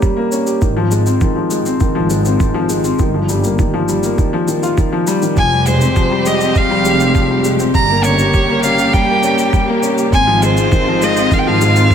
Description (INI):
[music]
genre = piano and strings electronica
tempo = 101 BPM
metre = 4/4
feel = straight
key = unclear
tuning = A4 = 438 Hz
[part]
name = dark grand piano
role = riff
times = 0.0-11.9 s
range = Eb3 to G4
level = -16 LUFS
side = left 2 dB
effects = ping-pong delay
[part]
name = electronic kick drum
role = drums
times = 0.0-11.9 s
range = none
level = -15 LUFS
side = right 1 dB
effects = none
[part]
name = shaker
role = drums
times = 0.0-11.9 s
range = none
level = -28 LUFS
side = left 2 dB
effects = overdrive
[part]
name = warm chamber double bass section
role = bass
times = 0.6-11.9 s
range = F1 to Ab1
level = -18 LUFS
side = equal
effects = sidechain pumping
[part]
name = rich violin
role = melody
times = 5.4-11.9 s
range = C5 to Bb5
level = -16 LUFS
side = right 1 dB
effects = none
[part]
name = clear symphonic string section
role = sustained chords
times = 5.4-11.9 s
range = Db3 to G4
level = -21 LUFS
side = right 1 dB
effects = sidechain pumping
[sound]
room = light reverb, studio reverb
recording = none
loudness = -12 LUFS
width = side -8 dB against mid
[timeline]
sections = 0.0-11.9 A section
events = none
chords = 0.0 Gdim; 0.6 Ab6; 3.0 Ebadd9/G; 5.4 Fmadd9; 7.7 Gdim; 10.1 Ab6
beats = 0.02 | 0.62 1.21 1.81 2.40 | 2.99 3.59 4.18 4.78 | 5.37 5.96 6.56 7.15 | 7.75 8.34 8.94 9.53 | 10.12 10.72 11.31 11.90